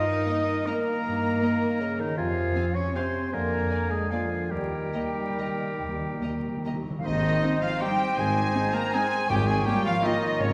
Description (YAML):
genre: classical, orchestral ballroom waltz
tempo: 132-175 BPM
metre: 3/4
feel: rubato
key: Ab major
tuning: A4 = 440 Hz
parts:
  - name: bright clarinet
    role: second line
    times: 0.0-10.5 s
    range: Eb4 to Eb5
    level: -36 LUFS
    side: equal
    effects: none
  - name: mellow cor anglais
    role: second line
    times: 0.0-10.5 s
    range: Bb4 to Ab5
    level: -39 LUFS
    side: equal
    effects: none
  - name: small flute group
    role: second line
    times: 0.0-10.5 s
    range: Db5 to Eb6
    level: -35 LUFS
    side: equal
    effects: none
  - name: mellow bassoon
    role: accompaniment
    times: 0.0-10.5 s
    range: C3 to C4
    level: -37 LUFS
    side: equal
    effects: none
  - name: warm French horn section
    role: sustained chords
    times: 0.0-10.2 s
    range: Eb3 to F4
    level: -37 LUFS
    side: equal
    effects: none
  - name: dark symphonic double bass section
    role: bass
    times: 0.0-10.5 s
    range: Ab1 to G2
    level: -35 LUFS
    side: equal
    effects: none
  - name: warm studio cello section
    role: bass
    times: 0.0-10.5 s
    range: Db3 to Eb4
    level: -35 LUFS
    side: equal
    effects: none
  - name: rich symphonic violin section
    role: melody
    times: 0.3-10.5 s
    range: Db5 to Bb5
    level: -40 LUFS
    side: equal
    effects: none
  - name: warm studio violin section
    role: second line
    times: 0.3-10.5 s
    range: Db5 to Bb5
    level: -36 LUFS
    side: equal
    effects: none
  - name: dark symphonic viola section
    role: accompaniment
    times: 0.3-10.1 s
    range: Bb3 to F4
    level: -37 LUFS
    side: equal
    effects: none
  - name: timpani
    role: percussion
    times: 4.5-7.1, 9.3-9.8 s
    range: Ab2 to Eb3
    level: -37 LUFS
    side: equal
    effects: none
  - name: clear trumpet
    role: stabs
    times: 7.1-10.5 s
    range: Db4 to Bb4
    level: -34 LUFS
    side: equal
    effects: none
  - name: mellow tuba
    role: bass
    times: 7.1-10.5 s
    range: Ab1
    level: -36 LUFS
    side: equal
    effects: none
room: wet concert hall reverb, RT60 1.8 s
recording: recorded in a church or concert hall, vinyl crackle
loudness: -26 LUFS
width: mono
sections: 0.0-7.1 A section; 7.1-10.5 B section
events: timpani fill 4.5-7.1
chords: 0.0 Eb/G; 2.2 Fm; 3.3 Bb7/F; 4.5 Eb; 7.1 Ab; 9.3 Bbm7/Ab